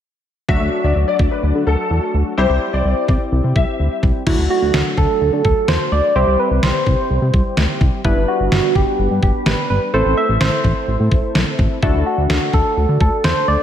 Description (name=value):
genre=synth-pop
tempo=127 BPM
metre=4/4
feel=straight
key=D mixolydian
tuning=A4 = 439 Hz
part: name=clear concert grand piano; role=second line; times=0.5-3.7 s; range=A4 to E5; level=-22 LUFS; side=left 4 dB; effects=ensemble chorus, diffuse ambient delay
part: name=funky polysynth comp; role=accompaniment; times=0.5-13.6 s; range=F#3 to B4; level=-22 LUFS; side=left 2 dB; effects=chorus
part: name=chorused synth bass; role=bass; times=0.5-13.6 s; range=G1 to D3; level=-17 LUFS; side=equal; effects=none
part: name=detuned 8-bit digital drum machine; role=drums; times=0.5-13.4 s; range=crash cymbal, kick drum, snare drum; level=-18 LUFS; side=equal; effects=none
part: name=soft struck synth lead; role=melody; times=4.3-13.6 s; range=E4 to E5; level=-18 LUFS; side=right 2 dB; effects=chorus, phaser, diffuse ambient delay
room=moderate lush hall reverb, RT60 1.7 s, digital ambience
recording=dreamy mix soaked in reverb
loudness=-14 LUFS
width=side -10 dB against mid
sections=0.5-4.3 A section; 4.3-13.6 B section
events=none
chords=0.5 D; 2.4 C; 4.3 D; 6.2 C; 8.0 G; 9.9 Am; 11.8 D